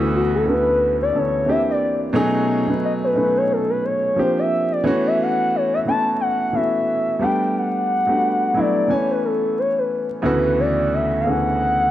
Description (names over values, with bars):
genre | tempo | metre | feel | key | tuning
R&B | 89 BPM | 4/4 | swing 57% on 16ths | unclear | A4 = 438 Hz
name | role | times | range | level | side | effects
gliding portamento lead | melody | 0.0-11.9 s | E4 to A5 | -20 LUFS | left 1 dB | chorus
warm grand piano | accompaniment | 0.0-11.9 s | D2 to G#5 | -20 LUFS | equal | none
room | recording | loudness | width
moderate plate reverb, RT60 3.1 s | dark, warm production, vinyl crackle | -17 LUFS | side -13 dB against mid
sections
0.0-10.2 A section; 10.2-11.9 B section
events
soft synth lead solo 0.0-10.2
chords
0.0 Dmaj13; 1.5 C9; 2.1 B13; 4.2 Bb69; 4.8 A69; 7.2 Gmaj9; 8.9 Amaj9; 10.2 Dmaj13